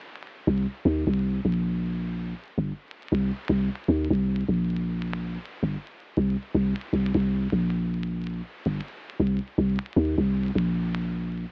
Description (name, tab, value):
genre	trip hop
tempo	79 BPM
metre	4/4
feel	swing 57% on 16ths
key	C minor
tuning	A4 = 440 Hz
part	soft 808-style bass	bass	0.5-11.4 s	G1 to Eb2	-25 LUFS	equal	none
room	little or no reverb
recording	worn, warbling old tape, cassette tape, vinyl crackle, warbly pitch drift, AM radio sound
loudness	-24 LUFS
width	side -38 dB against mid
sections	0.5-11.5 A section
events	none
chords	none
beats	| 0.46 1.22 1.98 2.74 | 3.50 4.26 5.02 5.78 | 6.54 7.30 8.06 8.82 | 9.58 10.34 11.10